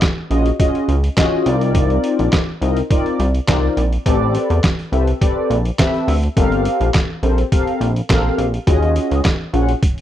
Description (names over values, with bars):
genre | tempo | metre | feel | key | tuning
early-eighties boogie funk | 104 BPM | 4/4 | straight | unclear | A4 = 440 Hz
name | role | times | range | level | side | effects
trip hop sampler-style drum kit | drums | 0.0-10.0 s | handclaps, hi-hat, kick drum, snare drum | -18 LUFS | equal | overdrive
mellow synth brass | accompaniment | 0.3-9.7 s | C4 to Gb5 | -19 LUFS | left 2 dB | chorus
chorused synth bass | bass | 0.3-9.7 s | G1 to E2 | -17 LUFS | equal | none
room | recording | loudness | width
little or no reverb | dry, close 1970s-style studio recording | -14 LUFS | side -11 dB against mid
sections
0.0-10.0 A section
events
none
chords
0.0 Ebm11; 1.5 Cm11; 4.1 Am11; 6.4 Gm11; 8.7 Ebm11